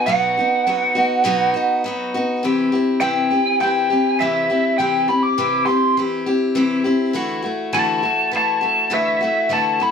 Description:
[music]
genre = rock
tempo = 102 BPM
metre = 4/4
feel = straight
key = unclear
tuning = A4 = 440 Hz
[part]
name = lead guitar through a small cranked amp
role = melody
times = 0.0-9.9 s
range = E5 to D6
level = -17 LUFS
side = equal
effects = overdrive, plate reverb
[part]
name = picked steel-string acoustic guitar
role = accompaniment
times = 0.0-9.9 s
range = B2 to G4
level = -20 LUFS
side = left 2 dB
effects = none
[sound]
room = moderate studio ambience, RT60 0.5 s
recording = none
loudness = -16 LUFS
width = side -6 dB against mid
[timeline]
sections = 0.0-2.4 A section; 2.4-9.9 B section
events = lead electric guitar solo 2.4-9.9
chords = 0.0 B; 2.4 C; 7.1 Dadd9

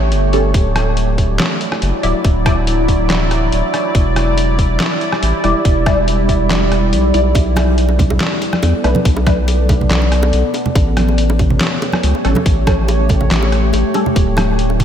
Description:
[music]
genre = deep dubstep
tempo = 141 BPM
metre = 4/4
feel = half-time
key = unclear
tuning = A4 = 440 Hz
[part]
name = deep dark ambient pad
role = sustained chords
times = 0.0-14.8 s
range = F#3 to D5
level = -18 LUFS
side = equal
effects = chorus, built-in reverb
[part]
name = saturated sub bass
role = bass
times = 0.0-14.8 s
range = D1 to E2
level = -15 LUFS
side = equal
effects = none
[part]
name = trip hop sampler-style drum kit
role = drums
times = 0.1-14.8 s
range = handclaps, hi-hat, rim click, snare drum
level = -21 LUFS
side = left 1 dB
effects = studio reverb
[part]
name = filtered dub chord stab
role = stabs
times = 0.3-2.6, 5.4-9.4, 12.2-14.1 s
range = F#3 to D5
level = -22 LUFS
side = left 1 dB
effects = phaser, ensemble chorus, dub echo
[part]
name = electronic kick drum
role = drums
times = 0.5-14.8 s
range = none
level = -14 LUFS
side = equal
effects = overdrive, studio reverb
[part]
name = bongos and congas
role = percussion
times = 7.3-14.8 s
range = none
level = -21 LUFS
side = right 2 dB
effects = dub echo
[sound]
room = moderate lush hall reverb, RT60 2.3 s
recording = dreamy mix soaked in reverb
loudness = -12 LUFS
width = side -9 dB against mid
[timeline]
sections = 0.0-14.8 A section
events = none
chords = 0.0 A7; 0.5 Dadd9; 3.9 Em7; 7.4 Bm7; 10.8 A7; 14.2 Dadd9

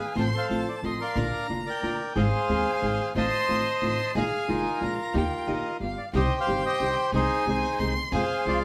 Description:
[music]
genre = tango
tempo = 181 BPM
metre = 3/4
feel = rubato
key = unclear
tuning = A4 = 440 Hz
[part]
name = bandoneon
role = melody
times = 0.0-8.6 s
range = Eb4 to A5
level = -30 LUFS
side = equal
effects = none
[part]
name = warm violin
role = second line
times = 0.0-8.6 s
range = Eb5 to C6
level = -36 LUFS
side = equal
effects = none
[part]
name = nylon-string guitar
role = accompaniment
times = 0.2-8.6 s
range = C3 to Ab4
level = -34 LUFS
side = equal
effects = none
[part]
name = rich studio string section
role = stabs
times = 0.2-8.6 s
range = A3 to Bb4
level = -39 LUFS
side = equal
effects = none
[part]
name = upright bass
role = bass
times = 0.2-8.6 s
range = F1 to F2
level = -34 LUFS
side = equal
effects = none
[sound]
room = wet studio reverb, RT60 0.7 s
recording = band playing live in one room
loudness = -27 LUFS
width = mono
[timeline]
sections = 0.0-6.1 A section; 6.1-8.6 B section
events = none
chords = 0.2 F/A; 1.2 Bb; 2.2 Ab; 3.2 F7/A; 4.1 Bb7sus4; 4.8 Bb7; 5.1 Eb; 5.8 G7; 6.1 Cm; 7.1 Ab/C; 8.1 Fm

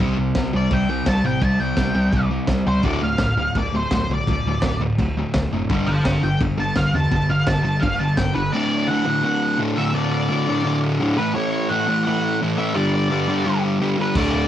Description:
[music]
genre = garage rock duo or trio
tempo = 169 BPM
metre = 4/4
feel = straight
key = D major from 8.5 s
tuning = A4 = 436 Hz
[part]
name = fuzz guitar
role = riff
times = 0.0-14.5 s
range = D2 to C4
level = -20 LUFS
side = equal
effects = distortion, cassette tape
[part]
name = picked electric bass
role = bass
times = 0.0-8.5, 14.1-14.5 s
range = D1 to E2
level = -27 LUFS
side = equal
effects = none
[part]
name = crunchy breakbeat drum kit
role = drums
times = 0.0-8.3, 14.2 s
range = crash cymbal, kick drum, snare drum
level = -25 LUFS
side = equal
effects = none
[part]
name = octave-fuzz lead guitar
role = melody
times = 0.6-14.5 s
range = B4 to A5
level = -24 LUFS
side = equal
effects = distortion
[sound]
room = small room ambience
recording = home recording on cassette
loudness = -18 LUFS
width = side -11 dB against mid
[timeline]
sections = 0.0-8.5 A section; 8.5-14.5 B section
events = lead electric guitar solo 0.0-8.5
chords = 0.0 C5; 2.8 D5; 5.7 G5; 8.5 D; 11.2 A; 12.8 G5

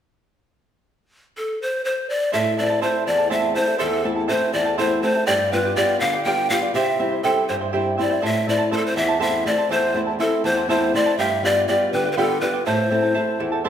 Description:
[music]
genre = andean folk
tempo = 81 BPM (dotted quarters)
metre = 6/8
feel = straight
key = A minor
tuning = A4 = 440 Hz
[part]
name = breathy hollow large pan pipes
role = melody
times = 1.4-13.6 s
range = A4 to G5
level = -21 LUFS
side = left 1 dB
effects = none
[part]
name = charango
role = accompaniment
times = 2.3-13.7 s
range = E4 to A5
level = -24 LUFS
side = right 5 dB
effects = none
[part]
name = flamenco guitar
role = accompaniment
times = 2.3-13.7 s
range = E2 to F4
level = -24 LUFS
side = left 3 dB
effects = none
[sound]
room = wet recital hall reverb, RT60 1.5 s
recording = minimal, uncompressed stereo recording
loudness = -18 LUFS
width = side -9 dB against mid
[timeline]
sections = 0.9-2.3 A section; 2.3-13.7 B section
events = none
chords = 0.9 N.C.; 2.3 Am; 5.3 G7; 6.7 C; 8.2 Am; 11.2 G7; 12.7 Am

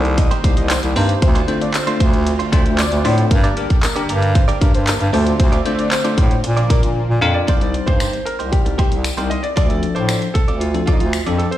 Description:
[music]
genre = dance-pop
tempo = 115 BPM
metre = 4/4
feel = straight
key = C dorian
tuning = A4 = 440 Hz
[part]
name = bell-like tine electric piano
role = accompaniment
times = 0.0-11.5 s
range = F3 to C5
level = -23 LUFS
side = left 4 dB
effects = fast stereo tremolo, sidechain pumping
[part]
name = warm analog pad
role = sustained chords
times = 0.0-7.5 s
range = D3 to G4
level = -27 LUFS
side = right 1 dB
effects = chorus, sidechain pumping
[part]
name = direct-recorded clean electric guitar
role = riff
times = 0.0-11.6 s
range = A3 to D5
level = -27 LUFS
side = right 8 dB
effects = wide subtle chorus
[part]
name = clear bass clarinet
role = bass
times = 0.0-11.5 s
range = C2 to Bb2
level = -19 LUFS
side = equal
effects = sidechain pumping
[part]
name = pop drum kit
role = drums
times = 0.0-11.6 s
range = finger snaps, handclaps, hi-hat, kick drum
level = -17 LUFS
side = equal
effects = none
[part]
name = fat analog lead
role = melody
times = 0.2-6.9 s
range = G4 to Eb5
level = -26 LUFS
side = equal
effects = ping-pong delay
[part]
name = tambourine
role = percussion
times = 0.7-11.3 s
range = none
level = -30 LUFS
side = left 7 dB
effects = none
[part]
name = clear concert grand piano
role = melody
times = 7.2-11.6 s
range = Eb4 to F5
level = -23 LUFS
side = equal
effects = ping-pong delay
[sound]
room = light reverb, digital ambience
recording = played on a big sound system in a bare room, stone room reverb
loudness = -14 LUFS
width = side -13 dB against mid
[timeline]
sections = 0.0-7.5 A section; 7.5-11.6 B section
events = drop 0.0-7.5; drums muted 7.0-7.5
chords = 0.0 Cm7; 1.2 Dm7; 3.3 Gm; 5.1 Dm7; 6.4 Bb; 7.5 Cm7; 9.6 Dm7

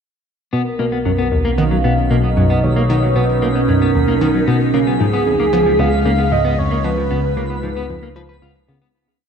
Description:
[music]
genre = ambient, sequencer-driven space music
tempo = 114 BPM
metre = 4/4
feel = straight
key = B lydian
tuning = A4 = 439 Hz
[part]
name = mellow horn-like synth lead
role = melody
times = 0.5-8.4 s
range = G#4 to E#5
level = -20 LUFS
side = right 1 dB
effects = wide subtle chorus, tape echo
[part]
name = evolving wavetable pad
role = sustained chords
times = 1.4-8.9 s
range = B2 to E#4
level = -21 LUFS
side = right 2 dB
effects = phaser, built-in reverb
[part]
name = clean electric guitar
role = arpeggios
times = 0.5-8.9 s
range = E#3 to B4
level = -23 LUFS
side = moving between left 6 dB and right 3 dB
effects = auto-pan, tape echo
[part]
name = analog pluck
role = riff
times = 0.5-8.8 s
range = C#2 to E#3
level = -20 LUFS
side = equal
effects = chorus, vintage 12-bit sampler grit, tape echo
[part]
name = analog drone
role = bass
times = 1.0-8.9 s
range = B1 to C#2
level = -20 LUFS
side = equal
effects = chorus
[part]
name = twinkling granular texture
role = texture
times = 1.2-9.0 s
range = B6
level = -36 LUFS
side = right 1 dB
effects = built-in reverb
[sound]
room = wet lush hall reverb, RT60 3.0 s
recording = dark, warm production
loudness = -14 LUFS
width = side -7 dB against mid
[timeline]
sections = 0.5-8.9 A section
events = fade-in on synth texture 0.5-8.9; fade-out 6.1-8.9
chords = 0.5 Bmaj7; 4.7 C#7

